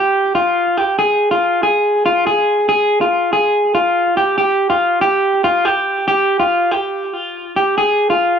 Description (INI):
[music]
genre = indie pop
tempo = 142 BPM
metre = 4/4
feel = straight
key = F minor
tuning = A4 = 440 Hz
[part]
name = electric guitar through a small old amp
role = solo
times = 0.0-8.4 s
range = F4 to Ab4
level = -13 LUFS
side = equal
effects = digital delay
[sound]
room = moderate studio ambience, RT60 0.5 s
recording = dark, warm production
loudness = -13 LUFS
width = side -7 dB against mid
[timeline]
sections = 0.0-8.4 A section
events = none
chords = none